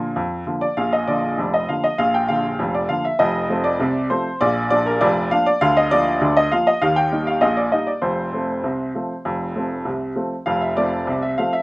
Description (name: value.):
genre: ragtime piano.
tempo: 99 BPM.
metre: 2/4.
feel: straight.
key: Bb major.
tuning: A4 = 440 Hz.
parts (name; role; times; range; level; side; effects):
clear upright piano; solo; 0.0-11.6 s; F1 to G5; -17 LUFS; equal; none.
room: light reverb.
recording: rough home demo mix.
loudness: -17 LUFS.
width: side -22 dB against mid.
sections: 0.8-11.6 A section.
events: none.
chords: 0.0 Bb; 3.2 F; 4.4 Bb; 5.6 Bb/D; 6.8 Eb; 8.0 F.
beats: 0.16 | 0.77 1.38 | 1.98 2.59 | 3.19 3.80 | 4.41 5.01 | 5.61 6.21 | 6.82 7.42 | 8.03 8.64 | 9.25 9.86 | 10.47 11.08.